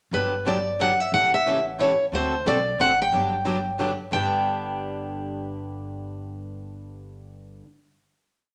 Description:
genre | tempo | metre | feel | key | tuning
acoustic string swing (jazz manouche) | 180 BPM | 3/4 | swing 60% on 8ths | G major | A4 = 440 Hz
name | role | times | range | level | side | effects
picked steel-string acoustic guitar | melody | 0.1-7.6 s | B4 to G5 | -25 LUFS | equal | none
picked steel-string acoustic guitar | accompaniment | 0.1-7.7 s | G2 to A4 | -34 LUFS | equal | none
picked swing-style acoustic guitar | accompaniment | 0.1-7.6 s | G2 to A4 | -33 LUFS | equal | none
upright bass | bass | 0.1-7.6 s | G1 to D2 | -37 LUFS | equal | none
room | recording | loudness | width
wet studio reverb, RT60 0.7 s | none | -24 LUFS | mono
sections
0.1-4.1 A section; 4.1-6.1 final chord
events
none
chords
0.1 Gmaj7; 1.1 A7; 2.1 D7; 3.1 Gmaj7; 4.1 G

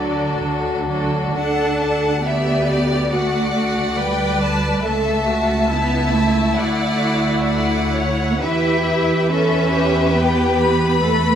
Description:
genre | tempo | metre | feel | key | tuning
classical, slow romantic movement for string orchestra | 58-71 BPM | 4/4 | rubato | D major | A4 = 439 Hz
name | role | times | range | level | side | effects
rich chamber violin section | melody | 0.0-11.4 s | D5 to B5 | -24 LUFS | left 5 dB | none
clear chamber violin section | second line | 0.0-11.4 s | F#4 to F#5 | -23 LUFS | left 2 dB | none
clear symphonic viola section | accompaniment | 0.0-11.4 s | F#3 to B4 | -23 LUFS | right 2 dB | none
clear chamber double bass section | bass | 0.0-11.4 s | C#2 to E2 | -23 LUFS | right 1 dB | none
rich symphonic cello section | bass | 0.0-11.4 s | D3 to E4 | -22 LUFS | right 2 dB | none
room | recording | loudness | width
moderate scoring stage reverb, RT60 1.4 s | none | -16 LUFS | side -9 dB against mid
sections
0.0-1.4 A section; 1.4-11.4 B section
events
none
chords
0.0 D; 4.9 A/C#; 6.6 D; 8.4 Em

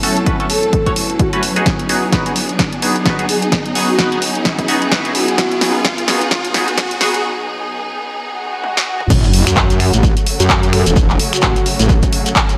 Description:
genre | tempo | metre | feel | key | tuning
bass house | 129 BPM | 4/4 | swing 58% on 16ths | F# dorian | A4 = 441 Hz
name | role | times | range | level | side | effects
clear studio string section | sustained chords | 0.0-12.6 s | C#3 to A4 | -24 LUFS | equal | sidechain pumping, low-pass filter
band-passed chord stab | stabs | 0.0-7.1 s | A3 to C#5 | -23 LUFS | equal | phaser, sidechain pumping, dub echo
house drum kit | drums | 0.0-12.6 s | crash cymbal, finger snaps, handclaps, hi-hat, snare drum, toms | -20 LUFS | equal | none
riser, swell and sub drop | sound effects | 0.0-11.0 s | none | -26 LUFS | equal | none
deep dark ambient pad | texture | 0.0-7.2 s | F#3 to D#5 | -29 LUFS | equal | none
electronic kick drum | drums | 0.3-12.5 s | none | -19 LUFS | equal | none
breathy flute-like synth lead | melody | 0.5-7.2, 10.7-11.7 s | F#4 to A4 | -24 LUFS | equal | chorus, dub echo
metallic wobble bass | bass | 9.1-12.0 s | E1 to F#2 | -17 LUFS | equal | distortion, chorus, tube saturation, sidechain pumping
shekere | percussion | 9.1-12.6 s | none | -26 LUFS | equal | none
room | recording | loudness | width
light reverb, digital ambience | high-pass filter | -15 LUFS | mono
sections
0.0-9.1 A section; 9.1-12.6 B section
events
build-up 0.0-9.1; riser 0.0-7.2; filter sweep 0.0-9.1; drum fill 1.7-7.2, 8.6-9.1; break 7.2-9.1; swell 8.3-9.1; drop 9.1-12.6; impact 9.1-11.0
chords
0.0 F#m; 1.7 B6; 9.1 F#m

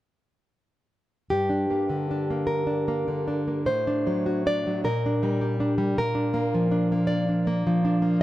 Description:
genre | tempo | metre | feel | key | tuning
romantic piece for solo classical guitar | 50-55 BPM (dotted quarters) | 6/8 | rubato | G minor | A4 = 440 Hz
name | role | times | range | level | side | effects
nylon-string guitar | solo | 1.3-8.2 s | G2 to D5 | -22 LUFS | equal | tape echo
room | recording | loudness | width
moderate studio reverb, RT60 0.6 s | none | -23 LUFS | side -15 dB against mid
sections
1.3-8.2 A section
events
none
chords
1.3 Gm; 3.7 D7/A; 4.9 Gm/Bb; 6.0 Bb

